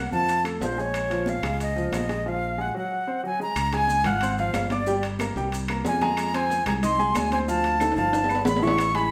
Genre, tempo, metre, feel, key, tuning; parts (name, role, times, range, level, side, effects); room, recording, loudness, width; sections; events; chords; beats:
Afro-Cuban jazz; 184 BPM; 4/4; straight; Bb minor; A4 = 440 Hz
breathy bright concert flute; melody; 0.0-9.1 s; C5 to Db6; -28 LUFS; equal
warm baby grand piano; accompaniment; 0.0-9.1 s; Fb3 to Ab6; -31 LUFS; equal
modern bright fingered electric bass; bass; 0.0-9.1 s; G1 to F2; -32 LUFS; equal
congas; percussion; 0.1-9.1 s; -36 LUFS; equal
maracas; percussion; 0.1-9.1 s; -46 LUFS; equal
timbales; percussion; 0.3-9.1 s; -34 LUFS; equal
claves; percussion; 0.5-8.9 s; -42 LUFS; equal
wet large studio reverb, RT60 1.1 s; band playing live in one room; -25 LUFS; mono
0.0-3.6 A section; 3.6-9.1 B section
drum fill 7.8-8.8
0.3 F; 0.9 Bbm7; 2.9 Ab7; 3.6 Dbmaj7; 4.9 Gm; 5.5 C5; 6.2 Fm7; 7.5 Dm; 8.1 G9
0.29 0.62 | 0.94 1.27 1.60 1.93 | 2.25 2.58 2.91 3.24 | 3.56 3.89 4.22 4.54 | 4.87 5.20 5.53 5.85 | 6.18 6.50 6.83 7.16 | 7.48 7.81 8.13 8.46 | 8.79 9.11